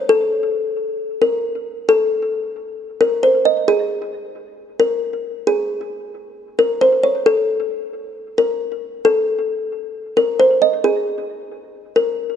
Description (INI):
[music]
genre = hip hop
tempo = 134 BPM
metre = 4/4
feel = half-time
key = unclear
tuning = A4 = 439 Hz
[part]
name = kalimba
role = solo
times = 0.0-12.4 s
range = Ab4 to Eb5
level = -16 LUFS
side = left 1 dB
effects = low-pass filter, tape echo
[sound]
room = moderate lush hall reverb, RT60 2.8 s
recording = none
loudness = -16 LUFS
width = side -8 dB against mid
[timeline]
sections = 0.0-3.7 A section; 3.7-12.4 B section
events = none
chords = none